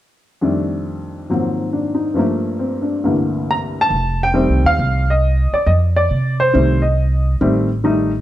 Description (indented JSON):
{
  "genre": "jazz piano trio",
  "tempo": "138 BPM",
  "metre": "4/4",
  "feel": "swing 68% on 8ths",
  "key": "F mixolydian",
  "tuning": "A4 = 438 Hz",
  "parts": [
    { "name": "warm baby grand piano", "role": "melody", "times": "0.4-8.1 s", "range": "C2 to Bb5", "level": "-17 LUFS", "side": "left 1 dB", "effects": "none" },
    { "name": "upright bass", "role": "bass", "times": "3.9-8.2 s", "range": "F1 to C3", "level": "-16 LUFS", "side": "right 1 dB", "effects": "none" }
  ],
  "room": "light reverb",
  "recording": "dark, warm production",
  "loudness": "-15 LUFS",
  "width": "side -13 dB against mid",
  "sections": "0.4-3.9 A section; 3.9-8.2 B section",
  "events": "none",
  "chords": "0.4 F13; 1.3 Ab13; 2.2 Gm9; 3.0 C13; 3.9 F7",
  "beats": "| 0.42 0.86 1.30 1.73 | 2.17 2.61 3.04 3.48 | 3.92 4.35 4.79 5.22 | 5.66 6.09 6.53 6.96 | 7.40 7.83"
}